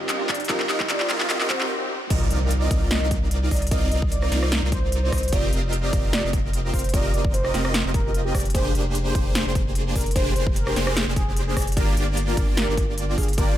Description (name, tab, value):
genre	future bass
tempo	149 BPM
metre	4/4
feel	swing 53% on 16ths, half-time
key	C minor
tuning	A4 = 439 Hz
part	felt-muted upright piano	accompaniment	0.0-1.9 s	G3 to Bb4	-34 LUFS	left 3 dB	sidechain pumping, tape echo
part	supersaw chords	riff	0.0-13.6 s	Bb3 to F5	-28 LUFS	right 1 dB	lush chorus, sidechain pumping
part	riser, swell and impact	sound effects	0.0-3.7 s	none	-31 LUFS	equal	none
part	big-room dance drum kit	drums	0.1-13.5 s	crash cymbal, handclaps, hi-hat, rim click, snare drum	-27 LUFS	equal	none
part	warm velvety synth lead	melody	0.3-13.5 s	G4 to Eb5	-31 LUFS	right 1 dB	chorus, sidechain pumping, ping-pong delay
part	electronic kick drum	drums	0.3-13.5 s	none	-24 LUFS	equal	none
part	saturated sub bass	bass	2.1-13.6 s	F1 to C2	-25 LUFS	equal	tube saturation, sidechain pumping
room	little or no reverb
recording	high-pass filter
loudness	-20 LUFS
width	side -12 dB against mid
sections	0.0-2.1 A section; 2.1-13.6 B section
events	build-up 0.0-2.1; drum fill 0.0-1.7; riser 0.0-1.7; filter sweep on soft synth lead 0.0-2.1; swell 1.3-2.1; stop 1.7-2.1; drop 2.1-13.6; impact 2.1-3.7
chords	0.0 F9sus4; 1.9 N.C.; 2.1 Cm11; 5.3 F9sus4; 8.3 Bb13/F; 11.8 Gm7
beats	0.09 | 0.49 0.90 1.30 1.70 | 2.10 2.51 2.91 3.31 | 3.71 4.12 4.52 4.92 | 5.33 5.73 6.13 6.53 | 6.94 7.34 7.74 8.14 | 8.55 8.95 9.35 9.76 | 10.16 10.56 10.96 11.37 | 11.77 12.17 12.57 12.98 | 13.38